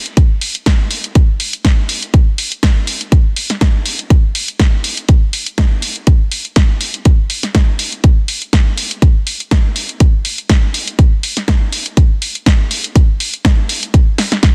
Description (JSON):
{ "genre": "house", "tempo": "122 BPM", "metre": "4/4", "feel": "swing 54% on 16ths", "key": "none", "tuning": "none", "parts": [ { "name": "punchy analog drum machine", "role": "drums", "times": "0.1-14.5 s", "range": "hi-hat, snare drum", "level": "-20 LUFS", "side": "equal", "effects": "sidechain pumping on hats, sidechain pumping on cymbals" }, { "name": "electronic kick drum", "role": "drums", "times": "0.2-14.5 s", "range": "none", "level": "-12 LUFS", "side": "equal", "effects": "none" } ], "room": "little or no reverb", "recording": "dense, heavily limited modern master", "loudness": "-14 LUFS", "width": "mono", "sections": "0.0-14.5 A section", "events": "drum fill 14.2-14.5", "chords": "none" }